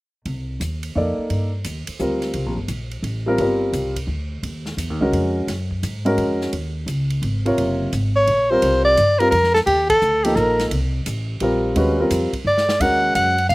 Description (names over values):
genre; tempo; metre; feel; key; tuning
modal jazz; 172 BPM; 3/4; swing 65% on 8ths; unclear; A4 = 440 Hz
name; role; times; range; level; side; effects
upright bass; bass; 0.3-13.5 s; Gb1 to Bb2; -24 LUFS; equal; none
swinging big-band drum kit; drums; 0.3-13.5 s; hi-hat, kick drum, ride cymbal, snare drum; -32 LUFS; right 1 dB; none
warm baby grand piano; accompaniment; 1.0-13.3 s; C3 to D5; -20 LUFS; equal; none
warm soprano saxophone; melody; 8.2-13.5 s; G4 to Gb5; -16 LUFS; equal; none
room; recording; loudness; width
little or no reverb; recorded outdoors, with no room sound; -17 LUFS; side -21 dB against mid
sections
0.2-8.6 A section; 8.6-13.5 B section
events
band accent 9.8; drum fill 12.5-12.8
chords
0.2 Cm11; 4.4 Ebm11; 8.6 Cm11; 12.8 Ebm11